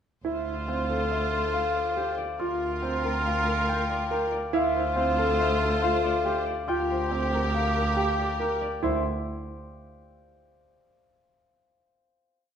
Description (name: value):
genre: classical, minimalist pattern music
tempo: 140 BPM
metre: 5/4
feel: straight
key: D minor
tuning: A4 = 440 Hz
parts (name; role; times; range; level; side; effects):
- warm baby grand piano; arpeggios; 0.2-9.0 s; C4 to Bb4; -30 LUFS; right 3 dB; none
- rich double bass; bass; 0.2-9.0 s; D2; -31 LUFS; right 2 dB; none
- bright oboe; second line; 0.3-8.6 s; F4 to G4; -31 LUFS; right 2 dB; none
- clear studio string section; sustained chords; 0.3-8.6 s; F4 to C5; -35 LUFS; left 2 dB; none
- concert harp; melody; 0.7-11.0 s; G4 to G5; -29 LUFS; left 5 dB; none
room: wet recital hall reverb, RT60 1.6 s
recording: none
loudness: -24 LUFS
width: side -8 dB against mid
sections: 0.3-8.8 A section; 8.8-11.0 final chord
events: none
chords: 0.3 Dm11; 2.4 Gm7/D; 4.5 Dm11; 6.7 Bb6/D; 8.8 Dmadd9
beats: | 0.25 0.68 1.11 1.54 1.97 | 2.40 2.83 3.25 3.68 4.11 | 4.54 4.97 5.40 5.83 6.25 | 6.68 7.11 7.54 7.97 8.40 | 8.82 9.25 9.68 10.11 10.54